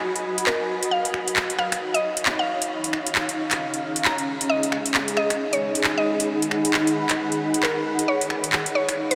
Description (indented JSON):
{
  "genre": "UK garage, two-step garage",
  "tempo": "134 BPM",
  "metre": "4/4",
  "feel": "swing 60% on 16ths",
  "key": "G# dorian",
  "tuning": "A4 = 442 Hz",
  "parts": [
    { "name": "granular cloud pad", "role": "texture", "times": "0.0-9.2 s", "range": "C#4 to B5", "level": "-28 LUFS", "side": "equal", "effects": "built-in reverb, lush chorus" },
    { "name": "house drum kit", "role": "drums", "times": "0.2-9.2 s", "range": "finger snaps, handclaps, hi-hat", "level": "-27 LUFS", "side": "equal", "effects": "none" },
    { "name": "mallet-like synth pluck", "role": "melody", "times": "0.5-9.2 s", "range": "A#4 to A#5", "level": "-29 LUFS", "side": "equal", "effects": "chorus, tape echo" }
  ],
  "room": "wet huge ambient reverb, RT60 7.6 s",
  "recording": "dreamy mix soaked in reverb",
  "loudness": "-23 LUFS",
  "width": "mono",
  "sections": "0.0-9.2 A section",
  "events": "none",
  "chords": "0.0 G#m7; 0.9 C#9; 2.7 A#m7; 4.5 G#m7; 8.1 C#9"
}